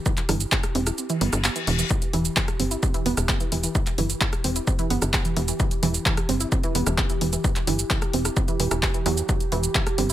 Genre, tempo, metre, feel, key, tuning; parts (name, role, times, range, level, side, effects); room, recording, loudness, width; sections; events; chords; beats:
driving peak-time techno; 130 BPM; 4/4; straight; E minor; A4 = 439 Hz
warbly tape-like pad; texture; 0.0-10.1 s; G4; -34 LUFS; right 3 dB; chorus, built-in reverb, sidechain pumping
wide unison pluck; riff; 0.1-10.1 s; E3 to E4; -28 LUFS; right 3 dB; auto-pan, sidechain pumping, tape echo
electronic kick drum; drums; 0.1-9.8 s; -24 LUFS; equal
punchy analog drum machine; drums; 0.1-10.1 s; handclaps, hi-hat, rim click, shaker; -26 LUFS; equal; overdrive, sidechain pumping on hats, sidechain pumping on perc
tight sequencer bass; bass; 0.3-10.1 s; E1 to E2; -25 LUFS; equal; sidechain pumping
reverse cymbal; sound effects; 1.2-1.9 s; -31 LUFS; left 6 dB
light reverb; echo-heavy mix; -21 LUFS; side -13 dB against mid
0.0-10.1 A section
fade-in on ambient pad 0.0-10.1; filter sweep on synth arpeggio sound 0.0-10.1; kick drops out 1.0-1.9; reverse cymbal 1.2-1.9
0.0 Em
| 0.06 0.52 0.98 1.44 | 1.90 2.37 2.83 3.29 | 3.75 4.21 4.67 5.13 | 5.60 6.06 6.52 6.98 | 7.44 7.90 8.37 8.83 | 9.29 9.75